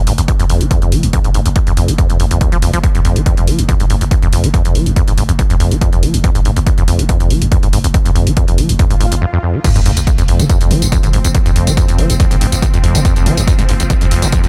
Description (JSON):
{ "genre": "driving peak-time techno", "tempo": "141 BPM", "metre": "4/4", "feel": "straight", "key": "F minor", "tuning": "A4 = 438 Hz", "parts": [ { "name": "acid bass, saw", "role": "riff", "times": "0.0-14.5 s", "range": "Eb2 to F3", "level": "-18 LUFS", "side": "equal", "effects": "sidechain pumping, digital delay" }, { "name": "growling 808-style bass", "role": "bass", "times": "0.0-14.5 s", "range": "F1", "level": "-20 LUFS", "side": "equal", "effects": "overdrive, sidechain pumping, low-pass filter" }, { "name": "punchy analog drum machine", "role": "drums", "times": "0.1-14.5 s", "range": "crash cymbal, hi-hat, tambourine, toms", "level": "-24 LUFS", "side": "equal", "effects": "overdrive, sidechain pumping on hats, sidechain pumping on cymbals, sidechain pumping on perc, sidechain pumping on toms" }, { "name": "electronic kick drum", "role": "drums", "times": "0.3-14.4 s", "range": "none", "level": "-16 LUFS", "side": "equal", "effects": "overdrive" }, { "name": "swell and sub drop", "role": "sound effects", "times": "9.0-11.3 s", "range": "none", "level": "-24 LUFS", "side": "equal", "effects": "none" }, { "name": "swarming drone", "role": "drone", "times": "10.5-14.5 s", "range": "F3 to C4", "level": "-27 LUFS", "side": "equal", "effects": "built-in reverb, sidechain pumping" } ], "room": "digital ambience", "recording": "none", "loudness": "-13 LUFS", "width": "mono", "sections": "0.0-9.6 A section; 9.6-14.5 B section", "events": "swell 9.0-9.6; break 9.2-9.6; drop 9.6-14.5; impact 9.6-11.3", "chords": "0.0 N.C.; 9.6 F5" }